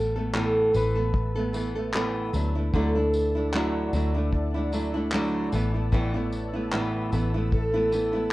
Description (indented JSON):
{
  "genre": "acoustic pop",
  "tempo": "75 BPM",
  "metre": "4/4",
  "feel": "swing 55% on 16ths",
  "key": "unclear",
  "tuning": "A4 = 440 Hz",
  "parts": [
    { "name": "fingerpicked steel-string acoustic guitar", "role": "melody", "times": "0.0-8.3 s", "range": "E4 to C#5", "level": "-29 LUFS", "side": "equal", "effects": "none" },
    { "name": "nylon-string guitar", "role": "accompaniment", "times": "0.0-8.3 s", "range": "A2 to A4", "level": "-28 LUFS", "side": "right 1 dB", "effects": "none" },
    { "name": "shimmering ambient pad", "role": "sustained chords", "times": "0.9-8.3 s", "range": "B4 to E6", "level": "-40 LUFS", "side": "left 1 dB", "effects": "chorus, built-in reverb" },
    { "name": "vintage muted fingered electric bass", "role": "bass", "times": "0.0-8.3 s", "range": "A1 to D2", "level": "-28 LUFS", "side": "left 1 dB", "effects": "none" },
    { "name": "cloth-damped thuddy drum kit", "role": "drums", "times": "0.3-8.1 s", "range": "handclaps, kick drum, tambourine", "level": "-29 LUFS", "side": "left 1 dB", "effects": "none" }
  ],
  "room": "light reverb",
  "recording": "worn, warbling old tape, cassette tape, warbly pitch drift",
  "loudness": "-23 LUFS",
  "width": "side -18 dB against mid",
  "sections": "0.0-8.3 A section",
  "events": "none",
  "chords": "0.0 Asus2; 2.3 Dadd9; 5.5 Asus2",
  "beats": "0.34 1.14 1.94 | 2.74 3.54 4.33 5.13 | 5.93 6.73 7.53 8.32"
}